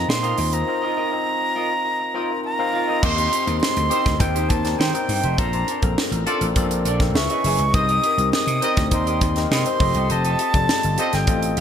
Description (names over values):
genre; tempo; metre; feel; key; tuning
polished 1980s jazz-funk pop; 102 BPM; 4/4; straight; unclear; A4 = 440 Hz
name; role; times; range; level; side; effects
breathy concert flute; melody; 0.0-11.6 s; G5 to Eb6; -23 LUFS; right 1 dB; ping-pong delay
barky tine electric piano; accompaniment; 0.0-11.6 s; C4 to F5; -25 LUFS; left 4 dB; overdrive, lush chorus
vintage slap bass; bass; 0.0-11.6 s; F1 to Eb3; -23 LUFS; equal; none
clean electric guitar; riff; 0.1-11.6 s; D4 to F5; -30 LUFS; right 4 dB; lush chorus
crisp fusion drum kit; drums; 0.1-11.6 s; crash cymbal, hi-hat, kick drum, snare drum; -23 LUFS; right 1 dB; none
bright horn section; second line; 3.0-11.2 s; Eb4 to Eb5; -32 LUFS; left 1 dB; ping-pong delay
room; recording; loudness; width
light reverb, small room ambience; bright 1980s-style digital production; -18 LUFS; side -8 dB against mid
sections
0.0-3.0 A section; 3.0-11.6 B section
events
none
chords
0.0 F7sus4; 3.0 Eb6; 5.4 Bbmaj9; 7.1 Dbm7; 7.7 Cm7; 9.8 F9